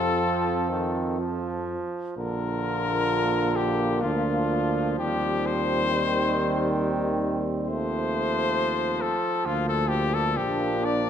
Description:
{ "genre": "classical, hymn-like piece for brass band", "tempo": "66 BPM", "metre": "3/4", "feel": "uneven beats, rubato", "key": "Bb major", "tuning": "A4 = 441 Hz", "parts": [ { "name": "warm cornet", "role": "melody", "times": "0.0-11.1 s", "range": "F4 to D5", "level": "-27 LUFS", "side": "left 5 dB", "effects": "none" }, { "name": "mellow flugelhorn", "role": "second line", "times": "0.0-11.1 s", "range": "C4 to F4", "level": "-33 LUFS", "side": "right 7 dB", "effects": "none" }, { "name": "brilliant trombone", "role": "accompaniment", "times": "0.0-11.1 s", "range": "D3 to F3", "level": "-31 LUFS", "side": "right 3 dB", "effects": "none" }, { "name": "warm euphonium", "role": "accompaniment", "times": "0.0-11.1 s", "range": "G3 to C4", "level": "-31 LUFS", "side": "left 1 dB", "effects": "none" }, { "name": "mellow tuba", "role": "bass", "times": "0.0-11.1 s", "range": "Bb1 to F2", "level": "-29 LUFS", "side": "equal", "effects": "none" } ], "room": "moderate recital hall reverb, RT60 1.5 s", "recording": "none", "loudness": "-23 LUFS", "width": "side -8 dB against mid", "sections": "0.0-2.2 A section; 2.2-11.1 B section", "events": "none", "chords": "0.0 F; 2.2 Bb; 4.0 Bb/D; 5.0 Cm/Eb; 7.7 F7/Eb; 9.5 Bb/D; 10.4 Bb", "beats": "0.18 1.19 | 2.17 3.11 4.03 | 4.97 5.93 6.81 | 7.69 8.58 9.46 | 10.38" }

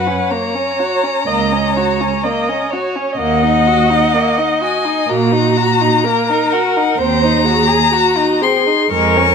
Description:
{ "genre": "classical, slow romantic movement for string quartet", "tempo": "63 BPM", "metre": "4/4", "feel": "rubato", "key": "unclear", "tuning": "A4 = 438 Hz", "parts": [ { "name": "rich violin", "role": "melody", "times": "0.0-9.3 s", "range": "F#5 to C#6", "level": "-17 LUFS", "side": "left 8 dB", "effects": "none" }, { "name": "warm violin", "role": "second line", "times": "0.0-9.3 s", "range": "G#3 to G#4", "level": "-19 LUFS", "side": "left 2 dB", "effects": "none" }, { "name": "dark viola", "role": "accompaniment", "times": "0.0-9.3 s", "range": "F#4 to D#5", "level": "-18 LUFS", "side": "right 3 dB", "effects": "none" }, { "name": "warm cello", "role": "bass", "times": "0.0-9.3 s", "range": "Db2 to A#2", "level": "-19 LUFS", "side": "right 5 dB", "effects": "none" } ], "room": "moderate large studio reverb, RT60 1.5 s", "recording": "minimal, uncompressed stereo recording", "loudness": "-12 LUFS", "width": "side -6 dB against mid", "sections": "0.0-9.3 A section", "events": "none", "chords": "0.0 Gb; 3.2 D#m; 7.0 G#7/D#", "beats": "0.31 1.28 2.24 | 3.18 4.14 5.09 6.04 | 6.99 7.93 8.92" }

